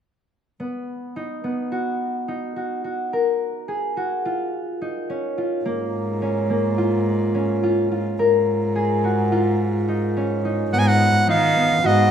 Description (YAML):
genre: contemporary instrumental, contemporary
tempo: 213 BPM (eighths)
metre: 9/8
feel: straight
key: G# dorian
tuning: A4 = 440 Hz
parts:
  - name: concert harp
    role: arpeggios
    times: 0.6-12.1 s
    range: A#3 to A#4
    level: -22 LUFS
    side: left 1 dB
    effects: none
  - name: clear cello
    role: bass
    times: 5.7-12.1 s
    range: G#2 to D#3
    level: -22 LUFS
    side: equal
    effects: none
  - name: bright soprano saxophone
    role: melody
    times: 10.7-12.1 s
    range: D#5 to G#5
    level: -18 LUFS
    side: right 1 dB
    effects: none
room: light reverb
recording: minimal, uncompressed stereo recording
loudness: -19 LUFS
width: side -8 dB against mid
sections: 0.6-10.7 A section; 10.7-12.1 B section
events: none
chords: 0.6 B; 3.1 D#m7; 5.7 A#m7/G#; 8.2 G#5; 10.7 G#m7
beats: | 0.59 0.88 1.16 1.44 1.72 2.00 2.28 2.56 2.85 | 3.13 3.41 3.69 3.97 4.25 4.53 4.81 5.09 5.38 | 5.66 5.94 6.22 6.50 6.78 7.06 7.34 7.63 7.91 | 8.19 8.47 8.75 9.03 9.31 9.59 9.87 10.15 10.44 | 10.72 11.00 11.28 11.56 11.84